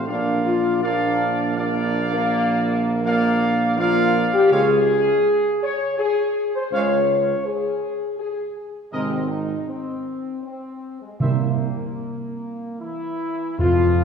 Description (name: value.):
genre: classical.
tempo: 81 BPM.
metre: 3/4.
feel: straight.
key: unclear.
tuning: A4 = 440 Hz.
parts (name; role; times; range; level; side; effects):
clear trumpet section; melody; 0.0-14.0 s; E4 to F5; -25 LUFS; equal; none.
dark French horn section; sustained chords; 0.0-14.0 s; Ab3 to Db5; -22 LUFS; left 2 dB; none.
warm trombone section; sustained chords; 0.0-14.0 s; C3 to Bb3; -27 LUFS; right 2 dB; none.
clear tuba; bass; 0.0-14.0 s; Ab1 to F2; -26 LUFS; right 6 dB; none.
timpani; percussion; 11.2-14.0 s; F2 to C3; -22 LUFS; right 3 dB; none.
room: wet scoring stage reverb, RT60 2.1 s.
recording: heard from further back in the room.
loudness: -18 LUFS.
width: side -6 dB against mid.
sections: 0.0-13.6 A section.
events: none.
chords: 0.1 Bb; 4.5 Db5; 8.9 Ab; 11.2 C7.